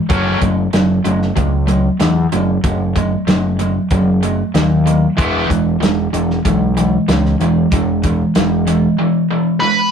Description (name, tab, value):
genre	classic rock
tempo	94 BPM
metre	4/4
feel	straight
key	F# dorian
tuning	A4 = 440 Hz
part	cranked stack guitar	riff	0.0-9.9 s	E3 to C#4	-16 LUFS	right 1 dB	overdrive
part	growling picked electric bass	bass	0.1-8.9 s	E1 to E2	-17 LUFS	left 1 dB	overdrive
part	damped 70s drum kit	drums	0.1-8.8 s	hi-hat, kick drum, snare drum	-18 LUFS	equal	none
part	octave-fuzz lead guitar	melody	9.6-9.9 s	B4	-13 LUFS	equal	distortion
room	moderate studio reverb, RT60 0.6 s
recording	rough rehearsal-room recording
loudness	-13 LUFS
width	side -7 dB against mid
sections	0.0-9.9 A section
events	none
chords	0.1 F#m; 5.2 E